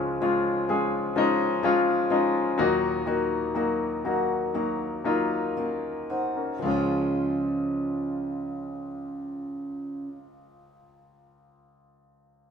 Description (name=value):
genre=pop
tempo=56-64 BPM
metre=4/4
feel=straight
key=Db major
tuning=A4 = 442 Hz
part: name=clear concert grand piano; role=accompaniment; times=0.0-12.5 s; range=Db2 to C5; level=-25 LUFS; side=left 3 dB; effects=none
part: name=fingerpicked steel-string acoustic guitar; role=arpeggios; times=0.0-10.2 s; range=Db3 to Ab4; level=-30 LUFS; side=right 2 dB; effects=none
room=light reverb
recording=band playing live in one room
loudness=-24 LUFS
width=side -6 dB against mid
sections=0.0-6.6 A section; 6.6-10.8 B section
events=slowing down 0.0-6.6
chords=0.0 Db; 2.6 Ebm; 6.6 Db